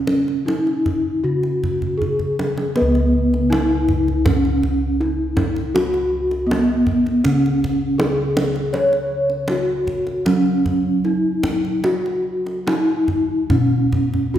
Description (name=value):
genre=Javanese gamelan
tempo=79 BPM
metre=4/4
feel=uneven beats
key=C# slendro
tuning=A4 = 441 Hz
part: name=gamelan-type bronze metallophone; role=melody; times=0.0-14.4 s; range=B3-25c to C#5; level=-19 LUFS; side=equal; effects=none
part: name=gamelan-type bossed gongs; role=bass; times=0.0-14.4 s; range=C#2 to C#5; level=-22 LUFS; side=equal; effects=none
part: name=kendang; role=percussion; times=0.1-14.4 s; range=none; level=-24 LUFS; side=right 1 dB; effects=none
room=moderate scoring stage reverb, RT60 1.6 s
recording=heard from further back in the room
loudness=-16 LUFS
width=side -11 dB against mid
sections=0.0-2.8 A section; 2.8-14.4 B section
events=drum fill 1.8-2.8, 14.1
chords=none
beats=0.45 1.23 2.00 | 2.75 3.50 4.25 5.00 | 5.75 6.49 7.24 7.99 | 8.74 9.49 10.26 11.05 | 11.85 12.67 13.50 14.36